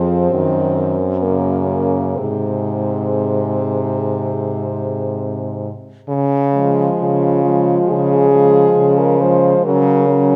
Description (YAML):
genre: classical, lyrical piece for horn quartet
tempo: 61-68 BPM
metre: 4/4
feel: rubato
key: Db major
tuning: A4 = 443 Hz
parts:
  - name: dark French horn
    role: melody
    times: 0.0-10.4 s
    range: F4 to C5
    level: -21 LUFS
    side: equal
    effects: none
  - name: warm French horn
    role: second line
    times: 0.0-10.4 s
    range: Ab3 to Db4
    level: -24 LUFS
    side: equal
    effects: none
  - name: mellow French horn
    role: accompaniment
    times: 0.0-10.4 s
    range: C3 to Gb3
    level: -23 LUFS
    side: equal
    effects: none
  - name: mellow French horn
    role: bass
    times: 0.0-10.4 s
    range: F2 to Db3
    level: -20 LUFS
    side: equal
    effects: none
room: moderate scoring stage reverb, RT60 1.6 s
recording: none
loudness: -16 LUFS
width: mono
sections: 0.0-6.1 A section; 6.1-10.4 B section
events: none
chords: 0.3 Ebm/Gb; 2.2 Ab; 6.1 Db; 9.6 Gb/Db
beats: 0.32 1.24 | 2.19 3.17 4.15 5.13 | 6.09 7.00 7.88 8.76 | 9.64